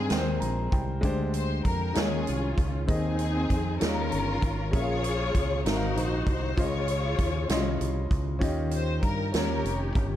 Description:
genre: slow gospel.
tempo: 65 BPM (dotted quarters).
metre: 6/8.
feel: straight.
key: Ab major.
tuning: A4 = 441 Hz.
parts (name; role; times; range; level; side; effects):
warm studio string section; melody; 0.0-10.2 s; C4 to Db5; -31 LUFS; left 2 dB; none.
warm upright piano; accompaniment; 0.0-10.2 s; Ab2 to C6; -32 LUFS; left 1 dB; none.
fingered electric bass; bass; 0.0-10.2 s; F1 to G2; -30 LUFS; equal; none.
swinging big-band drum kit; drums; 0.1-10.1 s; hi-hat, kick drum, snare drum; -30 LUFS; equal; none.
room: small room reverb.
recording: dark, warm production.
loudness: -25 LUFS.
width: side -12 dB against mid.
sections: 0.0-10.2 A section.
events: upright piano fill 0.1-1.0.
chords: 0.0 Abmaj9/Eb; 1.0 Bb13/D; 2.0 Eb9sus4; 2.9 Ab/Eb; 3.8 Eb9sus4; 4.7 Bbm7; 5.6 Ab13; 6.6 Dbmaj9; 8.4 Eb9.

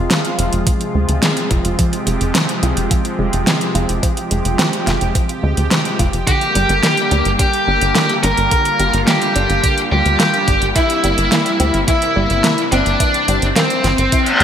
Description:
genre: synthwave.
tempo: 107 BPM.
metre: 4/4.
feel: straight.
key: F dorian.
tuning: A4 = 440 Hz.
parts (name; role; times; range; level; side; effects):
lush unison pad; sustained chords; 0.0-14.4 s; C3 to G4; -21 LUFS; equal; chorus, sidechain pumping.
tight sequencer bass; bass; 0.0-14.4 s; F1 to E2; -18 LUFS; equal; none.
analog pluck; arpeggios; 0.1-14.4 s; D3 to F4; -25 LUFS; right 3 dB; chorus, phaser, digital delay.
pop drum kit; drums; 0.1-14.4 s; hi-hat, snare drum; -19 LUFS; equal; studio reverb, gated reverb.
electronic kick drum; drums; 0.7-14.2 s; none; -18 LUFS; equal; studio reverb.
high-gain lead guitar; melody; 6.3-14.4 s; G3 to Bb4; -16 LUFS; equal; distortion, digital delay.
reverse cymbal; sound effects; 14.2-14.4 s; none; -12 LUFS; left 1 dB; none.
room: moderate lush hall reverb, RT60 1.8 s.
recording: bright 1980s-style digital production.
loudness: -13 LUFS.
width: side -9 dB against mid.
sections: 0.0-14.4 A section.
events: filter sweep on synth arpeggio sound 0.0-14.4; reverse cymbal 14.2.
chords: 0.0 Fm; 6.3 Gm; 10.8 C7/G.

